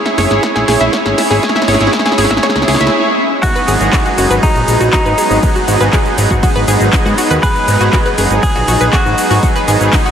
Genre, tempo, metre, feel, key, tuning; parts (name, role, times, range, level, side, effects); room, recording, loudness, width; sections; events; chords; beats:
progressive house; 120 BPM; 4/4; straight; G# minor; A4 = 439 Hz
shimmering ambient pad; sustained chords; 0.0-10.1 s; G#3 to B4; -19 LUFS; left 1 dB; chorus, built-in reverb, sidechain pumping
soft supersaw; stabs; 0.0-10.1 s; F#3 to C#5; -16 LUFS; right 3 dB; sidechain pumping, diffuse ambient delay
analog pluck; arpeggios; 0.1-10.1 s; F#4 to E5; -18 LUFS; equal; chorus, sidechain pumping, diffuse ambient delay
deep house drum kit; drums; 0.1-10.1 s; handclaps, hi-hat, ride cymbal, shaker, snare drum; -17 LUFS; left 1 dB; overdrive
fat analog bass; bass; 0.2-9.9 s; F#1 to G#2; -15 LUFS; equal; sidechain pumping
electronic kick drum; drums; 0.4-10.0 s; -15 LUFS; equal; overdrive, high-pass filter on kick, high-pass filter on room
direct-recorded clean electric guitar; melody; 3.4-9.4 s; D#4 to B4; -18 LUFS; equal; spring reverb, diffuse ambient delay
wet huge ambient reverb, RT60 3.9 s; dreamy mix soaked in reverb; -10 LUFS; side -8 dB against mid
0.0-3.4 A section; 3.4-10.1 B section
build-up 0.0-3.4; drum fill 0.0-2.9; drop 3.4-10.1
0.0 C#m; 3.4 G#m7
0.43 0.93 | 1.43 1.93 2.43 2.93 | 3.43 3.93 4.43 4.93 | 5.43 5.93 6.43 6.93 | 7.43 7.93 8.43 8.93 | 9.43 9.93